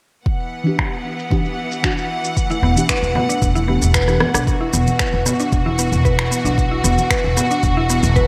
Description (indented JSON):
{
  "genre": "organic downtempo",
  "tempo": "114 BPM",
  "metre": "4/4",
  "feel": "straight",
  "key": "E minor",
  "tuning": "A4 = 439 Hz",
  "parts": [
    { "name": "clear symphonic string section", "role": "sustained chords", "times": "0.3-8.3 s", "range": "B2 to F#5", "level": "-25 LUFS", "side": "equal", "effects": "sidechain pumping" },
    { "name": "electronic kick drum", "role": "drums", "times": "0.3-8.3 s", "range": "none", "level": "-23 LUFS", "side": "equal", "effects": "none" },
    { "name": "electronic shaker, finger snaps and rim click", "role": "drums", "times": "0.3-8.3 s", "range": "none", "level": "-25 LUFS", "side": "equal", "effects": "low-pass filter on perc, low-pass filter on snare, gated reverb" },
    { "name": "deep mellow chord stab", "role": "accompaniment", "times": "0.6-4.5 s", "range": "E3 to G4", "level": "-26 LUFS", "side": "equal", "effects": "chorus, cassette tape, sidechain pumping, delay" },
    { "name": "mallet-like synth pluck", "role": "arpeggios", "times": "2.5-8.3 s", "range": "B3 to B4", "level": "-24 LUFS", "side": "equal", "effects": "chorus, delay" },
    { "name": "congas", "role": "percussion", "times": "2.5-8.1 s", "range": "none", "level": "-31 LUFS", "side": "equal", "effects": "none" },
    { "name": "upright bass", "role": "bass", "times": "2.6-8.3 s", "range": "E1 to B1", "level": "-22 LUFS", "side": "equal", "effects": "sidechain pumping" }
  ],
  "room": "wet lush hall reverb, RT60 1.7 s",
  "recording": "bright 1980s-style digital production",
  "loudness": "-18 LUFS",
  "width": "mono",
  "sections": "0.3-4.5 A section; 4.5-8.3 B section",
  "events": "filter sweep on synth stab 0.3-4.5; drum fill 4.1-4.5",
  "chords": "0.3 Em7; 4.5 E5"
}